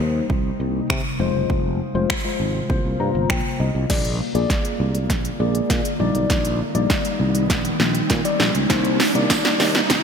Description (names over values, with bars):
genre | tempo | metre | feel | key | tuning
dance-pop | 100 BPM | 4/4 | straight | unclear | A4 = 442 Hz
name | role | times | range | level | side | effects
mellow tine electric piano | accompaniment | 0.0-9.8 s | G3 to Bb5 | -25 LUFS | left 4 dB | analog chorus, sidechain pumping
glassy FM pad | sustained chords | 0.0-10.0 s | C3 to F4 | -26 LUFS | equal | ensemble chorus, built-in reverb, sidechain pumping
sustaining fretless electric bass | bass | 0.0-10.0 s | F1 to C3 | -23 LUFS | right 1 dB | sidechain pumping
house drum kit | drums | 0.3-10.0 s | crash cymbal, finger snaps, hi-hat, kick drum, snare drum | -22 LUFS | right 1 dB | gated reverb
riser | sound effects | 6.2-10.0 s | none | -29 LUFS | right 3 dB | none
tambourine | percussion | 9.0-10.0 s | none | -33 LUFS | right 10 dB | none
room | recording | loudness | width
moderate lush hall reverb, RT60 2.8 s | bright 1980s-style digital production, high-pass filter | -18 LUFS | side -6 dB against mid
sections
0.0-3.9 A section; 3.9-10.0 B section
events
tine electric piano fill 2.7-3.9; build-up 3.9-10.0; drum fill 3.9-10.0; filter sweep 3.9-10.0; riser 6.2-10.0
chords
0.0 Cm7; 1.2 Fm; 2.7 C7sus4; 3.9 Bb7; 6.0 Ebmaj7/Bb; 8.7 Cm7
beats
0.30 0.90 | 1.50 2.10 2.70 3.30 | 3.90 4.50 5.10 5.70 | 6.30 6.90 7.50 8.10 | 8.70 9.30 9.90